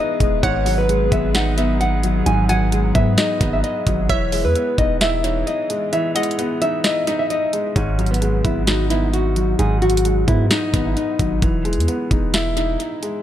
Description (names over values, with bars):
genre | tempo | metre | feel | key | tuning
hip hop, trap | 131 BPM | 4/4 | half-time | G# minor | A4 = 439 Hz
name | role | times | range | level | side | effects
nylon-string guitar | melody | 0.0-11.4 s | B3 to G#5 | -22 LUFS | equal | low-pass filter, tape echo
hollow square pluck | second line | 0.0-7.7 s | D#5 to G#5 | -26 LUFS | right 2 dB | chorus, tape echo
dark baby grand piano | accompaniment | 0.0-13.2 s | G#2 to E4 | -22 LUFS | left 1 dB | low-pass filter, tape echo
warbly tape-like pad | sustained chords | 0.0-7.7 s | E3 to B4 | -29 LUFS | left 2 dB | chorus, built-in reverb, phaser
long sustained 808-style bass | bass | 0.2-12.8 s | E1 to G#2 | -21 LUFS | equal | none
trap drum kit | drums | 0.2-13.1 s | hi-hat, kick drum, snare drum | -22 LUFS | equal | tape echo
room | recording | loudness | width
light reverb | echo-heavy mix | -16 LUFS | side -11 dB against mid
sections
0.0-7.8 A section; 7.8-13.2 B section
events
kick muted 5.9-7.8; break 11.4-13.2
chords
0.4 G#m7; 4.1 Emaj7; 7.8 G#m7; 11.4 Emaj7